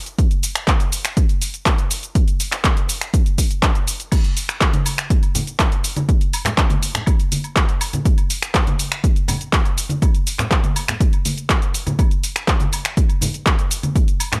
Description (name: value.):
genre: house.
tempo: 122 BPM.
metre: 4/4.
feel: straight.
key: none.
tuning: none.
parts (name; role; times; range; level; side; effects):
deep house drum kit; drums; 0.1-14.4 s; crash cymbal, finger snaps, handclaps, hi-hat, shaker; -24 LUFS; equal; overdrive, studio reverb.
electronic kick drum; drums; 0.2-14.1 s; none; -20 LUFS; equal; overdrive, studio reverb.
woodblock and congas; percussion; 4.1-14.4 s; none; -28 LUFS; equal; sidechain pumping on perc.
room: digital ambience.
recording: none.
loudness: -19 LUFS.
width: mono.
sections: 0.0-14.4 A section.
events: none.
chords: none.